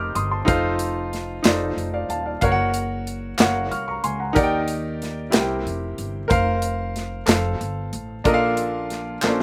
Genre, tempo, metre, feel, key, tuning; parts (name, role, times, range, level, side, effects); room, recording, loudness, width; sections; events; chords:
slow gospel; 62 BPM (dotted quarters); 6/8; straight; A4 = 440 Hz
clear grand piano; accompaniment; 0.0-9.4 s; Bb2 to G6; -25 LUFS; equal; slapback echo
upright bass; bass; 0.0-9.4 s; Eb1 to Eb2; -30 LUFS; equal
modern studio drum kit; drums; 0.2-9.4 s; hi-hat, kick drum, snare drum; -24 LUFS; equal
group handclap; percussion; 1.4-9.4 s; -29 LUFS; equal
little or no reverb; recorded outdoors, with no room sound; -23 LUFS; mono
0.0-9.4 A section
drum fill 9.2
0.5 F7; 2.4 Gbmaj7; 4.4 Ebmaj7; 5.3 C7; 6.3 Fsus4; 7.3 F; 8.3 Bbmaj7